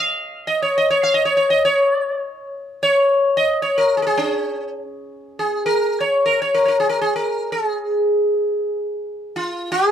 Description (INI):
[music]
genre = indian classical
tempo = free time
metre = none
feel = none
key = Db raga bhupali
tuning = A4 = 440 Hz
[part]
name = sitar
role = solo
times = 0.0-9.9 s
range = Db4 to F5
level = -17 LUFS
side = equal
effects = none
[sound]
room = light reverb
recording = band playing live in one room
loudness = -16 LUFS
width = side -9 dB against mid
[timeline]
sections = 0.0-5.2 A section; 5.2-9.9 A section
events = none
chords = none